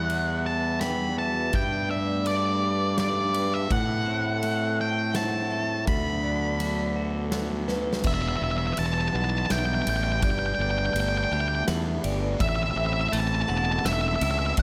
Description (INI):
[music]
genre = post-rock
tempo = 83 BPM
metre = 3/4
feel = straight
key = G major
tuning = A4 = 439 Hz
[part]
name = octave-fuzz lead guitar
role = melody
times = 0.0-14.6 s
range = D5 to B5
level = -30 LUFS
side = equal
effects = distortion, slapback echo
[part]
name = phased analog pad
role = sustained chords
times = 0.0-14.6 s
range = F#3 to B4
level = -40 LUFS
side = equal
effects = phaser, chorus
[part]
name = twelve-string electric guitar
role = arpeggios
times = 0.0-14.6 s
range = A2 to B4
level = -37 LUFS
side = equal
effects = slapback echo
[part]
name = vibraphone with medium hard mallets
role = arpeggios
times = 0.0-14.6 s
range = B4 to G5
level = -37 LUFS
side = equal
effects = slapback echo
[part]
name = fuzz fingered electric bass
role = bass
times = 0.0-14.6 s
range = E1 to A2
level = -30 LUFS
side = equal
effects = overdrive
[part]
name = big rock drum kit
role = drums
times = 0.1-14.6 s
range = crash cymbal, kick drum, ride cymbal, snare drum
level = -35 LUFS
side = equal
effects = none
[sound]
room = moderate spring reverb, RT60 1.9 s, small room ambience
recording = none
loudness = -26 LUFS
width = mono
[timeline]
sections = 0.0-8.1 A section; 8.1-14.6 B section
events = drum fill 7.7-8.1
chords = 0.0 Emadd9; 1.5 Gadd9; 3.7 Am; 5.9 D6; 8.1 Emadd9; 10.2 Gadd9; 12.4 Am